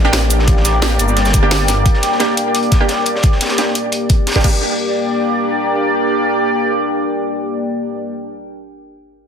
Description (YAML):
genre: dark technical drum and bass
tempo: 174 BPM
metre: 4/4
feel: straight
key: G minor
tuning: A4 = 444 Hz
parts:
  - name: sweeping resonant pad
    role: sustained chords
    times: 0.0-8.1 s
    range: Bb3 to D5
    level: -18 LUFS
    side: left 2 dB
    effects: chorus, sidechain pumping
  - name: orchestra-hit-like synth stab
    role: stabs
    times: 0.0-8.5 s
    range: Bb3 to G4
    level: -21 LUFS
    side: right 4 dB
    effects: built-in reverb, digital delay
  - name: snarling distorted saw bass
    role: bass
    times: 0.0-1.8 s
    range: G1 to A1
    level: -16 LUFS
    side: equal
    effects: overdrive, sidechain pumping
  - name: warbly tape-like pad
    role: texture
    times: 0.0-8.1 s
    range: D4 to G5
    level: -22 LUFS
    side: right 1 dB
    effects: chorus, built-in reverb, sidechain pumping
  - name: crunchy breakbeat drum kit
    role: drums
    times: 0.1-4.4 s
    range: hi-hat, snare drum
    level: -23 LUFS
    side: equal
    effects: high-pass filter on hats, studio ambience, high-pass filter on snare, high-pass filter on room
  - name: drum and bass drum kit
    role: drums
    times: 0.1-4.5 s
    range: crash cymbal, hi-hat, shaker, snare drum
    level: -20 LUFS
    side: left 1 dB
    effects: soft clipping on snare, studio ambience
  - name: electronic kick drum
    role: drums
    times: 0.5-4.5 s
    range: none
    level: -13 LUFS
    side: equal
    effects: overdrive, studio ambience
room: light reverb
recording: dense, heavily limited modern master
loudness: -13 LUFS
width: side -7 dB against mid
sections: 0.0-4.6 A section; 4.6-7.4 B section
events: fade-out on ambient pad 0.0-4.6; filter sweep on synth stab 0.0-4.6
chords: 0.0 Gm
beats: 0.13 | 0.48 0.82 1.17 1.51 | 1.86 2.20 2.55 2.89 | 3.24 3.58 3.92 4.27 | 4.62 4.96 5.30 5.65 | 5.99 6.34 6.68 7.03